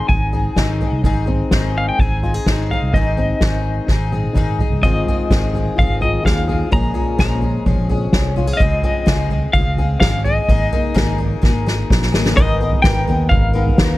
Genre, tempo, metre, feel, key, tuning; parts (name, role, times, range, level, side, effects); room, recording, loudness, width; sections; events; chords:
indie folk with a building arrangement; 127 BPM; 4/4; straight; A4 = 443 Hz
clean electric guitar; melody; 0.0-14.0 s; Eb5 to Bb5; -22 LUFS; left 1 dB; tremolo
fingerpicked acoustic archtop guitar; accompaniment; 0.0-10.5 s; F2 to Ab4; -25 LUFS; left 3 dB
picked twelve-string acoustic guitar; accompaniment; 0.0-14.0 s; Ab2 to Bb4; -25 LUFS; left 5 dB
fingered electric bass; bass; 0.1-14.0 s; Ab1 to Eb2; -20 LUFS; equal
soft-mallet drum kit; drums; 0.1-13.9 s; kick drum, snare drum, toms; -17 LUFS; equal
little or no reverb; dry, close 1970s-style studio recording; -14 LUFS; side -17 dB against mid
0.0-4.8 A section; 4.8-12.4 B section; 12.4-14.0 C section
drum fill 3.9-4.8, 11.4-12.4
0.0 Ab6; 6.7 Bbm7; 8.6 Dbmaj7; 10.5 Absus2; 12.4 Abmadd9